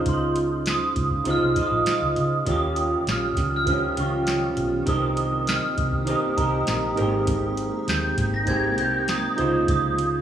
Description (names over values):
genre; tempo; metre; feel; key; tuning
indie pop, bedroom pop; 100 BPM; 4/4; straight; Ab major; A4 = 440 Hz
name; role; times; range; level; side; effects
electric guitar through a small old amp; accompaniment; 0.0-10.2 s; Eb3 to Eb5; -28 LUFS; left 2 dB; lush chorus, vibrato effect
tine electric piano; accompaniment; 0.0-10.2 s; Eb4 to Db5; -28 LUFS; right 5 dB; fast stereo tremolo, cassette tape
glockenspiel with soft plastic mallets; melody; 0.1-10.2 s; Bb5 to Bb6; -26 LUFS; right 2 dB; ensemble chorus, analog delay
vintage muted fingered electric bass; bass; 0.1-10.2 s; Ab1 to Db3; -28 LUFS; equal; none
soft vintage rhythm box; drums; 0.1-10.1 s; hi-hat, kick drum, snare drum; -28 LUFS; equal; none
granular cloud pad; sustained chords; 3.3-10.2 s; C3 to C5; -34 LUFS; right 3 dB; built-in reverb
room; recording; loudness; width
light reverb, digital ambience; rough home demo mix, studio reverb; -21 LUFS; side -10 dB against mid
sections
0.0-10.2 A section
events
none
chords
0.0 Dbmaj9; 2.5 Eb9; 4.9 Cm7; 7.0 Abmaj9; 9.4 Dbmaj9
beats
| 0.06 0.66 1.26 1.86 | 2.46 3.07 3.67 4.27 | 4.87 5.47 6.08 6.68 | 7.28 7.88 8.48 9.08 | 9.68